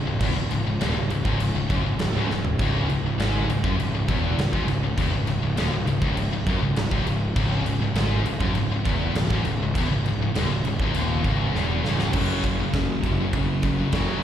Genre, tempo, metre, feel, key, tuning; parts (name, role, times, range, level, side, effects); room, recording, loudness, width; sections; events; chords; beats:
heavy metal; 101 BPM; 4/4; straight; C# minor; A4 = 440 Hz
high-gain distorted guitar; riff; 0.0-14.2 s; C#2 to F#3; -31 LUFS; right 9 dB; distortion, slapback echo
scooped high-gain guitar; riff; 0.0-14.2 s; C#2 to F#3; -28 LUFS; left 7 dB; distortion, slapback echo
thick fuzz guitar; riff; 0.0-14.2 s; C#2 to F#3; -29 LUFS; equal; distortion, slapback echo
fuzz picked electric bass; bass; 0.0-14.1 s; C#1 to G#1; -26 LUFS; equal; overdrive
big rock drum kit; drums; 0.2-14.1 s; crash cymbal, kick drum, ride cymbal, snare drum, toms; -28 LUFS; equal
small room ambience; live gig heard through the venue's PA, recital hall reverb; -21 LUFS; side -10 dB against mid
0.0-12.1 A section; 12.1-14.2 B section
drum fill 2.3, 11.5-12.1
0.0 C#m; 12.1 F#5
| 0.21 0.81 1.40 2.00 | 2.60 3.19 3.79 4.38 | 4.98 5.58 6.17 6.77 | 7.37 7.96 8.56 9.15 | 9.75 10.35 10.95 11.54 | 12.14 12.74 13.33 13.93